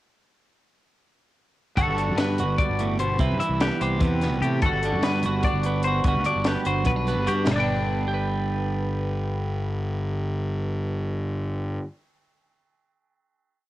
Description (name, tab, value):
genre	math rock and midwest emo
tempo	295 BPM (eighths)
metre	7/8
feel	straight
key	G major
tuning	A4 = 440 Hz
part	twelve-string electric guitar	accompaniment	1.8-11.8 s	G2 to B4	-27 LUFS	right 4 dB	cassette tape
part	twelve-string electric guitar	arpeggios	1.8-11.8 s	G4 to G5	-28 LUFS	left 5 dB	cassette tape
part	fuzz fingered electric bass	bass	1.8-11.8 s	G1 to C3	-26 LUFS	left 1 dB	overdrive
part	compact cocktail drum kit	drums	1.8-7.6 s	hi-hat, kick drum, ride cymbal, snare drum, toms	-27 LUFS	equal	cassette tape
room	studio ambience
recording	home recording on cassette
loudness	-22 LUFS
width	side -15 dB against mid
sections	1.8-7.5 A section; 7.5-10.3 final chord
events	none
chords	1.8 Gmaj9; 3.2 Cmaj7; 4.6 Gmaj9; 6.1 Gmaj7; 7.5 G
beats	| 1.77 1.97 2.18 2.38 2.58 2.79 2.99 | 3.20 3.40 3.60 3.81 4.01 4.22 4.42 | 4.62 4.83 5.03 5.24 5.44 5.64 5.85 | 6.05 6.25 6.46 6.66 6.87 7.07 7.27 | 7.47 7.68 7.88 8.08 8.29 8.49 8.69 | 8.89 9.10 9.30 9.50 9.71 9.91 10.11